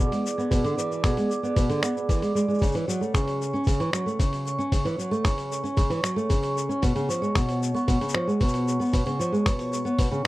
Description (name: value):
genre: folktronica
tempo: 114 BPM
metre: 4/4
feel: straight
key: unclear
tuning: A4 = 440 Hz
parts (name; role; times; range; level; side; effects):
- vibraphone with medium hard mallets; second line; 0.0-10.3 s; G#4 to D6; -30 LUFS; right 2 dB; tape echo
- nylon-string guitar; arpeggios; 0.0-10.3 s; B2 to C#4; -25 LUFS; equal; vintage 12-bit sampler grit, tape echo
- lo-fi sampler-style drum kit; drums; 0.0-10.3 s; finger snaps, hi-hat, shaker; -32 LUFS; left 1 dB; overdrive
- electronic kick drum; drums; 0.5-10.1 s; none; -24 LUFS; equal; none
room: little or no reverb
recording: dry, close 1970s-style studio recording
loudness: -22 LUFS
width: side -18 dB against mid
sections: 0.0-10.3 A section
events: none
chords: 0.0 E7; 2.6 A; 6.8 C#7(no3)